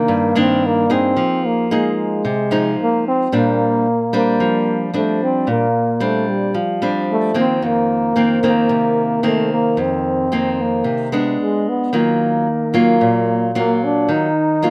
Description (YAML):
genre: bossa nova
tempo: 111 BPM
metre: 4/4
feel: straight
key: Bb major from 3.3 s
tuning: A4 = 440 Hz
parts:
  - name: breathy trombone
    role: melody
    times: 0.0-14.7 s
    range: G3 to Eb4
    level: -20 LUFS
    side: equal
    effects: none
  - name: nylon-string guitar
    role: accompaniment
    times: 0.0-14.7 s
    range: F2 to Ab4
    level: -20 LUFS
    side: equal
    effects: none
room: little or no reverb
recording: close, detailed microphones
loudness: -17 LUFS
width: mono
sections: 0.0-3.3 A section; 3.3-14.7 B section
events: none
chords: 0.0 Cm9; 1.2 Fm7; 2.8 Bb7sus4; 3.3 Bb69; 7.6 F7sus4; 11.4 Abdim; 11.9 Ebmadd9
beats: 0.09 0.62 | 1.16 1.70 2.24 2.78 | 3.32 3.85 4.39 4.93 | 5.47 6.01 6.55 7.08 | 7.62 8.16 8.70 9.24 | 9.78 10.31 10.85 11.39 | 11.93 12.47 13.01 13.55 | 14.09 14.62